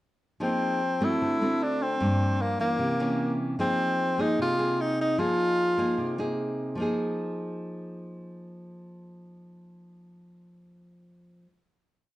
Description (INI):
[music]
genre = bossa nova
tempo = 150 BPM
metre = 4/4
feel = straight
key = F minor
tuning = A4 = 444 Hz
[part]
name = breathy tenor saxophone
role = melody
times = 0.4-6.4 s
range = Bb3 to F4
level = -26 LUFS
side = equal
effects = plate reverb
[part]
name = nylon-string guitar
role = accompaniment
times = 0.4-11.5 s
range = G2 to Ab4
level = -29 LUFS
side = equal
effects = none
[sound]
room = wet large studio reverb, RT60 0.9 s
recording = dark, warm production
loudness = -24 LUFS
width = side -16 dB against mid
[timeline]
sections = 0.4-6.8 A section; 6.8-10.0 final chord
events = none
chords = 0.4 Fm7; 1.2 D7; 2.0 Gm7b5; 2.8 C7b9; 3.6 Fm7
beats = | 0.41 0.80 1.20 1.60 | 1.99 2.39 2.79 3.19 | 3.58 3.98 4.38 4.78 | 5.18 5.58 5.97 6.37 | 6.77 7.17 7.57 7.97 | 8.37 8.77 9.17 9.57